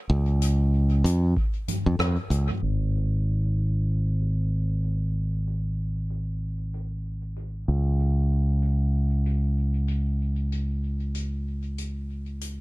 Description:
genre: ambient dub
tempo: 95 BPM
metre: 4/4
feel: swing 59% on 16ths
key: unclear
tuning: A4 = 441 Hz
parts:
  - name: modern bright fingered electric bass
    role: bass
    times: 0.1-12.6 s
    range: G#1 to E#2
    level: -23 LUFS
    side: equal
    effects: none
  - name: soft-mallet drum kit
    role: drums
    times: 0.4-12.6 s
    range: hi-hat, rim click, toms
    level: -32 LUFS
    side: left 2 dB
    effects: low-pass filter on hats, low-pass filter on toms, low-pass filter on snare, low-pass filter on room, dub echo
  - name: electronic kick drum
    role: drums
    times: 1.4-1.5 s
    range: none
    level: -26 LUFS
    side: equal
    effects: none
room: little or no reverb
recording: echo-heavy mix, low-pass filter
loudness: -23 LUFS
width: side -21 dB against mid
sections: 0.0-2.6 A section; 2.6-12.6 B section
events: filter sweep on drum 2.6-12.6; filter sweep 2.6-12.6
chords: none

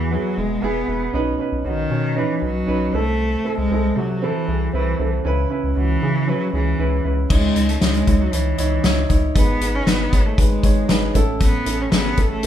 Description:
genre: piano-driven pop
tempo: 117 BPM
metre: 4/4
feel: straight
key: unclear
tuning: A4 = 438 Hz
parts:
  - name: rich cello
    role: melody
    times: 0.0-12.5 s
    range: D#3 to C#4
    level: -23 LUFS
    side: equal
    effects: none
  - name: warm grand piano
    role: accompaniment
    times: 0.0-12.5 s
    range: G#2 to C#5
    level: -23 LUFS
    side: right 3 dB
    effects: none
  - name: round analog bass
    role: bass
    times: 0.0-12.5 s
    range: E1 to C#3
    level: -23 LUFS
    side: left 1 dB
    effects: none
  - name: loose indie drum kit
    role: drums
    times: 7.3-12.5 s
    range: crash cymbal, hi-hat, kick drum, snare drum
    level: -18 LUFS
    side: left 1 dB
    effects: none
room: light reverb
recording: band playing live in one room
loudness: -17 LUFS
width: side -10 dB against mid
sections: 0.0-7.3 A section; 7.3-12.5 B section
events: none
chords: 0.0 E; 1.1 Badd9; 2.9 Am/C; 5.2 C#m7; 7.3 C#madd9; 9.4 G#m; 11.1 A

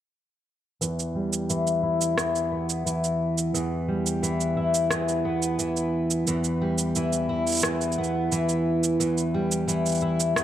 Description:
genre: folktronica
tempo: 88 BPM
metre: 4/4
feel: straight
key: E minor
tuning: A4 = 442 Hz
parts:
  - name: fingerpicked twelve-string acoustic guitar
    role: arpeggios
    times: 0.8-10.4 s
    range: E2 to E4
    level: -24 LUFS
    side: equal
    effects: low-pass filter, ping-pong delay
  - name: electronic cabasa and rim click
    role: drums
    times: 0.8-10.4 s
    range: none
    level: -28 LUFS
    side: right 3 dB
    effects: none
room: light reverb, small room reverb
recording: none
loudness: -23 LUFS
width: side -11 dB against mid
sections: 0.8-10.4 A section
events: filter sweep on twelve-string acoustic guitar 0.8-10.4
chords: 0.8 Em

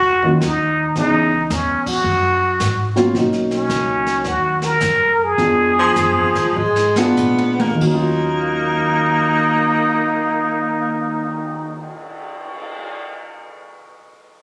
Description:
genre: jazz, small-group swing and bop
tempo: 93-110 BPM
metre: 4/4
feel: swing 67% on 8ths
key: Eb minor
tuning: A4 = 440 Hz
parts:
  - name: trumpet with plunger mute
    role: melody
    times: 0.0-11.9 s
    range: C#4 to A#4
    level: -20 LUFS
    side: equal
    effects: none
  - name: upright bass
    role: bass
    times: 0.0-11.8 s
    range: B1 to Bb2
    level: -28 LUFS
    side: equal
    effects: none
  - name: dark baby grand piano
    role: accompaniment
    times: 0.2-12.0 s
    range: Eb2 to F4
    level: -22 LUFS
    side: equal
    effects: none
  - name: jazz brush drum kit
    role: drums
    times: 0.2-12.8 s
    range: brushed snare drum, crash cymbal, cymbal swell, hi-hat, kick drum, snare drum, toms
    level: -30 LUFS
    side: equal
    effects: none
  - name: warm baritone saxophone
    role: second line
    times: 5.8-11.9 s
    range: F3 to Cb4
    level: -23 LUFS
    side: equal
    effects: none
room: moderate studio reverb, RT60 0.7 s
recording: recorded on a phone in the room, studio reverb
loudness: -17 LUFS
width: mono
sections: 0.0-3.2 A section; 3.2-7.8 B section; 7.8-12.9 C section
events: band accent 1.8; slowing down 3.2-7.8; drum fill 6.6-7.8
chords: 0.0 Ebm9; 1.0 Dbm7; 2.1 Gbadd9; 3.2 Bmaj9; 5.4 Bb7b9; 7.8 Ebm9

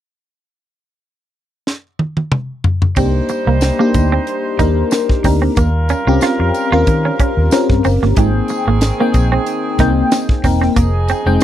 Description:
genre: polished 1980s jazz-funk pop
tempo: 92 BPM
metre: 4/4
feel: swing 54% on 16ths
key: C minor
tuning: A4 = 443 Hz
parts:
  - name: tight funk drum kit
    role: drums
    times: 1.7-11.4 s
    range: crash cymbal, hi-hat, kick drum, snare drum, toms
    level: -16 LUFS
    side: equal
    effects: none
  - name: mellow horn section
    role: second line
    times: 3.0-11.4 s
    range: Eb3 to C5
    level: -22 LUFS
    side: right 2 dB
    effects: none
  - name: FM electric piano with soft pad layer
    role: accompaniment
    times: 3.0-11.4 s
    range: Ab3 to G5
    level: -17 LUFS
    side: left 3 dB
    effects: phaser, analog chorus
  - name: semi-hollow electric guitar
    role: riff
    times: 3.0-11.3 s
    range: Ab3 to F4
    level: -19 LUFS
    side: right 7 dB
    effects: lush chorus
  - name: vintage muted fingered electric bass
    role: bass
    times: 3.0-11.4 s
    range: E1 to Eb3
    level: -15 LUFS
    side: equal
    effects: none
  - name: tambourine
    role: percussion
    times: 3.0-11.4 s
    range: none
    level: -34 LUFS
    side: left 16 dB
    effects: none
room: little or no reverb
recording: dry, close 1970s-style studio recording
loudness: -12 LUFS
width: side -11 dB against mid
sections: 0.4-3.0 A section; 3.0-11.4 B section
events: drum fill 1.7-3.0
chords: 0.4 N.C.; 3.0 Cm7; 5.6 Eb13; 8.2 Abmaj7; 10.8 Fm7

